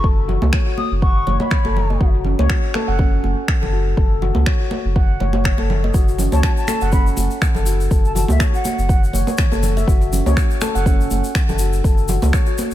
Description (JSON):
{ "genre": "afro house", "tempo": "122 BPM", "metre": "4/4", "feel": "swing 56% on 16ths", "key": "F# dorian", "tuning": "A4 = 440 Hz", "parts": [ { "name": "mellow hollow silver concert flute", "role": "melody", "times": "0.0-2.1, 6.3-9.0 s", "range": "E5 to D#6", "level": "-26 LUFS", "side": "left 1 dB", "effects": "digital delay" }, { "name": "handpan", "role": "arpeggios", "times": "0.0-12.6 s", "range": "C#4 to F#5", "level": "-24 LUFS", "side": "left 4 dB", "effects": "sidechain pumping, low-pass filter, digital delay" }, { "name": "warm sub bass", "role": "bass", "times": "0.0-12.7 s", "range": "F#1 to C#2", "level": "-19 LUFS", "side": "equal", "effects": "sidechain pumping" }, { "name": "electronic kick drum", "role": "drums", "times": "0.0-12.4 s", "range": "none", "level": "-17 LUFS", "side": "equal", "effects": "none" }, { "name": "congas", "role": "percussion", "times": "0.3-12.7 s", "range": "none", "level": "-25 LUFS", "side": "right 5 dB", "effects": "none" }, { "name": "electronic finger snaps", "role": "drums", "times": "0.5-12.4 s", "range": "none", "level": "-27 LUFS", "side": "equal", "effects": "none" }, { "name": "egg shaker", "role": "percussion", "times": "5.9-12.7 s", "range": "none", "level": "-31 LUFS", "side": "left 4 dB", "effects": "none" } ], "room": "little or no reverb", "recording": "none", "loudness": "-15 LUFS", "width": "side -13 dB against mid", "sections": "0.0-12.7 A section", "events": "none", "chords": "0.0 Bsus2/F# (rootless); 5.9 F#5" }